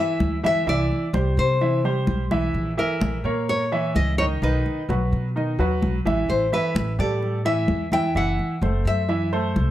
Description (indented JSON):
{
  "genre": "latin, Cuban son and guajira",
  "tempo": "128 BPM",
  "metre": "4/4",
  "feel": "straight",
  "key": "unclear",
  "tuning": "A4 = 440 Hz",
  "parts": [
    { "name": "nylon-string guitar", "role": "melody", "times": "0.0-9.3 s", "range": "A#4 to G5", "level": "-26 LUFS", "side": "left 2 dB", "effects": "none" },
    { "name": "clear grand piano", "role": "arpeggios", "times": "0.0-9.7 s", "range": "D#3 to E5", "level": "-24 LUFS", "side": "right 2 dB", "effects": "none" },
    { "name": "upright bass", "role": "bass", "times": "0.0-9.7 s", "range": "F#1 to E3", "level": "-25 LUFS", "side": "equal", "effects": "none" },
    { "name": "congas", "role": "percussion", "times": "0.2-9.7 s", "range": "none", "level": "-28 LUFS", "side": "left 1 dB", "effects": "none" }
  ],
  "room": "light reverb",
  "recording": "none",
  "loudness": "-20 LUFS",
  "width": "side -13 dB against mid",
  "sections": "0.0-9.7 A section",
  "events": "none",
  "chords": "0.0 N.C.; 0.7 Cadd9; 2.5 A#dim; 4.4 B; 6.3 A5; 8.2 F#m7b5"
}